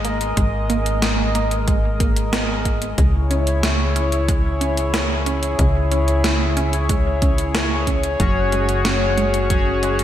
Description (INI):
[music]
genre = synthwave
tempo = 92 BPM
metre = 4/4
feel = straight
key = unclear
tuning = A4 = 440 Hz
[part]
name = chorused pulse-width pad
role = sustained chords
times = 0.0-10.0 s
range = G#3 to D#5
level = -23 LUFS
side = left 1 dB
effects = sidechain pumping
[part]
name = wide unison pluck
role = arpeggios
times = 0.0-10.0 s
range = F#3 to E4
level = -28 LUFS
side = right 4 dB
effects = digital delay
[part]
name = tight sequencer bass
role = bass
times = 0.0-10.0 s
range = F#1 to C#2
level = -21 LUFS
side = equal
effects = tube saturation
[part]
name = gated 80s digital drum machine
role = drums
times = 0.0-10.0 s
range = hi-hat, snare drum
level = -24 LUFS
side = equal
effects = gated reverb, gated reverb snare, slapback echo
[part]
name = electronic kick drum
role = drums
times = 0.4-9.6 s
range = none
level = -20 LUFS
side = equal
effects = none
[part]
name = chorused polysynth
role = stabs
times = 8.2-10.0 s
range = C#4 to C#5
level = -22 LUFS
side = left 4 dB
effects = cassette tape, digital delay
[sound]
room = moderate scoring stage reverb, RT60 2.0 s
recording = big arena sound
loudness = -16 LUFS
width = side -11 dB against mid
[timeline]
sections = 0.0-10.0 A section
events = none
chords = 0.0 G#madd9; 3.0 C#m; 8.2 F#sus2